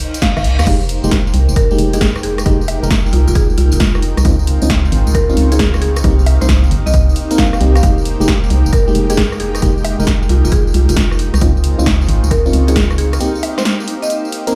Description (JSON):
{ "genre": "UK garage, two-step garage", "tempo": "134 BPM", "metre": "4/4", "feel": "swing 66% on 16ths", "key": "F minor", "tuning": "A4 = 440 Hz", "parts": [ { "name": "punchy analog drum machine", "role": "drums", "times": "0.0-14.5 s", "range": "bongos, crash cymbal, hi-hat, rim click, snare drum", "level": "-22 LUFS", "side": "equal", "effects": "overdrive" }, { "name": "reverse cymbal", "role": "sound effects", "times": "0.0-0.7 s", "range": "none", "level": "-30 LUFS", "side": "equal", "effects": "none" }, { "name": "granular cloud pad", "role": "texture", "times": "0.0-14.6 s", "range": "Ab3 to Db6", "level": "-29 LUFS", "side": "equal", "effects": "built-in reverb, sidechain pumping" }, { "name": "tambourine", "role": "percussion", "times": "0.1-14.5 s", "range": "none", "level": "-32 LUFS", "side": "equal", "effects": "none" }, { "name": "buzzing marimba with hard mallets", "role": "melody", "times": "0.2-14.2 s", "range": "F4 to F5", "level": "-24 LUFS", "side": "equal", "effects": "tape echo" }, { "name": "electronic kick drum", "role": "drums", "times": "0.2-12.9 s", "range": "none", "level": "-19 LUFS", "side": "equal", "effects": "overdrive" }, { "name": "organ-like FM bass", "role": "bass", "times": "0.4-13.2 s", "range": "F1 to Eb2", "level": "-16 LUFS", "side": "equal", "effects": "none" }, { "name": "warm analog pad", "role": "sustained chords", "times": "0.7-14.6 s", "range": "Ab3 to G4", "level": "-29 LUFS", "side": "equal", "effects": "chorus, sidechain pumping" }, { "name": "FM electric piano", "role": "stabs", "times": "0.7-14.6 s", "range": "Ab3 to C5", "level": "-22 LUFS", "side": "equal", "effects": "chorus, tape echo" } ], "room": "little or no reverb", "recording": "played on a big sound system in a bare room, large studio reverb", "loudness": "-13 LUFS", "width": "mono", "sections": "0.0-14.6 A section", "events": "reverse cymbal 0.0-0.7; break 13.2-14.6", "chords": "0.0 Cm7; 0.7 Fm11; 4.2 Dbmaj9; 6.0 Cm7; 7.8 Fm11; 11.4 Dbmaj9; 13.2 Cm7" }